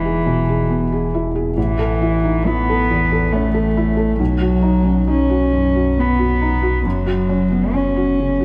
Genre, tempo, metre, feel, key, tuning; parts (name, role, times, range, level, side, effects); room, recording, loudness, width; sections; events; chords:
neoclassical piano and strings; 68 BPM; 3/4; rubato; A4 = 439 Hz
dark cello; second line; 0.0-8.4 s; E3 to C#4; -21 LUFS; equal
felt-muted upright piano; accompaniment; 0.0-8.4 s; A1 to A4; -22 LUFS; equal
sub bass with octave; bass; 0.0-8.4 s; E1 to B1; -24 LUFS; equal
wet concert hall reverb, RT60 2.6 s; dark, warm production; -17 LUFS; mono
0.0-8.4 A section
0.0 E; 1.6 A; 4.2 B; 6.8 F#5